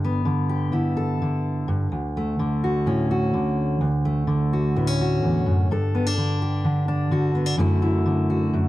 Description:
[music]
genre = folk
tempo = 127 BPM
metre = 4/4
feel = straight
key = D major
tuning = A4 = 440 Hz
[part]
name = fingerpicked steel-string acoustic guitar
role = solo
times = 0.0-8.7 s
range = D2 to A4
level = -20 LUFS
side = equal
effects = none
[sound]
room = light reverb, small room ambience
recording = dry, close 1970s-style studio recording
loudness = -20 LUFS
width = side -16 dB against mid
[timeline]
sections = 0.0-5.7 A section; 5.7-8.7 B section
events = none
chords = 0.0 G6; 1.9 Dmaj7; 5.7 Gadd9; 7.6 Dadd9/F#

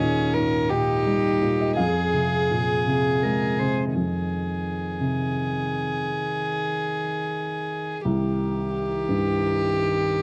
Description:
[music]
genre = neoclassical piano and strings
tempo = 53-60 BPM (dotted quarters)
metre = 6/8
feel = rubato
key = F minor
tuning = A4 = 445 Hz
[part]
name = warm violin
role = melody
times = 0.0-10.2 s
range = G4 to Bb4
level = -28 LUFS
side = equal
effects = none
[part]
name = warm cello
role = second line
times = 0.0-10.2 s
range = Eb3 to C5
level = -33 LUFS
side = equal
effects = none
[part]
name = dark grand piano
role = accompaniment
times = 0.0-10.2 s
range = C2 to G5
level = -27 LUFS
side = equal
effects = none
[sound]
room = little or no reverb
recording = dry, close 1970s-style studio recording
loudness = -24 LUFS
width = mono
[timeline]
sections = 0.0-4.0 A section; 4.0-10.2 B section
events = none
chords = 0.0 Eb7; 1.8 Fm; 4.0 Fm7; 8.1 Cm

